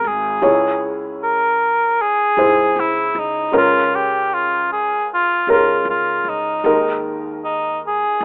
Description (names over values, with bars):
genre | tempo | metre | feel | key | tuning
folk | 77 BPM | 4/4 | straight | unclear | A4 = 440 Hz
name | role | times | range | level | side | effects
warm cor anglais | melody | 0.0-8.2 s | Eb4 to Bb4 | -19 LUFS | equal | none
felt-muted upright piano | accompaniment | 0.0-8.2 s | Ab1 to Db5 | -22 LUFS | equal | none
upright bass | bass | 0.0-8.2 s | Ab1 to Eb2 | -39 LUFS | equal | none
room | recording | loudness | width
light reverb, small room ambience | rough home demo mix, telephone sound | -18 LUFS | mono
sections
0.0-8.2 A section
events
none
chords
0.4 Dbm; 3.5 Bbm7/Db; 6.6 Ebsus4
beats
| 0.44 1.22 2.00 2.77 | 3.55 4.32 5.10 5.87 | 6.65 7.43 8.21